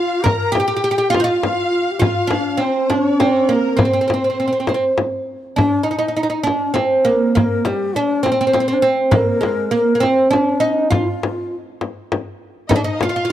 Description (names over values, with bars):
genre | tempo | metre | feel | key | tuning
Persian modal ensemble | 68 BPM (dotted quarters) | 6/8 | straight | C dastgah shur | A4 = 443 Hz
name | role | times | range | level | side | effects
oud | melody | 0.0-13.3 s | G3 to Bb4 | -17 LUFS | right 2 dB | none
breathy mellow ney | second line | 0.0-13.3 s | C4 to B4 | -23 LUFS | left 5 dB | none
warm studio violin section | second line | 0.0-5.0, 12.7-13.3 s | Bb4 to Bb5 | -24 LUFS | equal | none
frame drum | percussion | 0.3-13.1 s | none | -20 LUFS | left 2 dB | none
room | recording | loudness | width
light reverb, small room ambience | dry, close 1970s-style studio recording | -15 LUFS | side -12 dB against mid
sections
0.0-5.6 A section; 5.6-13.3 B section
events
none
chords
none